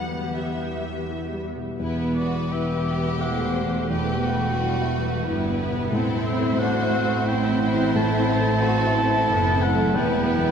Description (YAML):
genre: cinematic, emotional film score for orchestra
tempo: 88 BPM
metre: 3/4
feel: uneven beats, rubato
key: E minor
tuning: A4 = 435 Hz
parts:
  - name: clear studio violin section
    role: melody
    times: 0.0-10.5 s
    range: A4 to F#5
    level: -32 LUFS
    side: left 5 dB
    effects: none
  - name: dark grand piano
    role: accompaniment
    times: 0.0-10.5 s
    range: E2 to E5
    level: -27 LUFS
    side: left 1 dB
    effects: none
  - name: rich studio viola section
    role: accompaniment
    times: 0.0-10.5 s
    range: G3 to G4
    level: -29 LUFS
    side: right 2 dB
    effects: none
  - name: rich studio cello section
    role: bass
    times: 0.0-10.5 s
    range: E2 to A2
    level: -28 LUFS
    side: right 2 dB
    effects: none
  - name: clear studio violin section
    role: second line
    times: 1.8-10.5 s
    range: E4 to G4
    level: -30 LUFS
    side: left 2 dB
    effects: none
  - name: clear studio double bass section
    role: bass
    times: 1.8-10.5 s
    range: E1 to A1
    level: -29 LUFS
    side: right 2 dB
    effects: none
  - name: mellow oboe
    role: second line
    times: 2.2-10.5 s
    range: D5 to A5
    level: -27 LUFS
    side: right 1 dB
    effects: none
room: wet cathedral reverb, RT60 5.4 s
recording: none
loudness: -20 LUFS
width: side -7 dB against mid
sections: 0.0-1.8 A section; 1.8-10.5 A section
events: none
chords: 0.0 Em; 5.9 Am; 10.0 Em